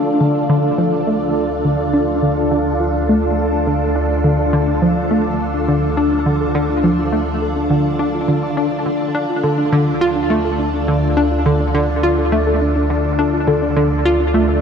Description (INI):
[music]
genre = ambient, sequencer-driven space music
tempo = 104 BPM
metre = 4/4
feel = straight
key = D minor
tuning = A4 = 440 Hz
[part]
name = string machine, full ensemble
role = sustained chords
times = 0.0-14.6 s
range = D4 to A4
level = -19 LUFS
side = equal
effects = ensemble chorus
[part]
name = soft round pluck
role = arpeggios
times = 0.0-14.6 s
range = D4 to D6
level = -24 LUFS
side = moving between left 6 dB and right 2 dB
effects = chorus, auto-pan, analog delay
[part]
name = analog pluck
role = riff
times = 0.0-14.5 s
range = D3 to F4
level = -18 LUFS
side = equal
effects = chorus, analog delay
[part]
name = fat analog bass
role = bass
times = 0.0-14.6 s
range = D2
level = -22 LUFS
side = equal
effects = none
[sound]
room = wet cathedral reverb, RT60 6.8 s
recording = in a vast, echoing space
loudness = -14 LUFS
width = side -7 dB against mid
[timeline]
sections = 0.0-14.6 A section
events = fade-in on synth arpeggio sound 0.0-14.6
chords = 0.0 Dm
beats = 0.21 0.78 1.36 | 1.94 2.52 3.09 3.67 | 4.25 4.82 5.40 5.98 | 6.55 7.13 7.71 8.28 | 8.86 9.44 10.02 10.59 | 11.17 11.74 12.32 12.90 | 13.48 14.05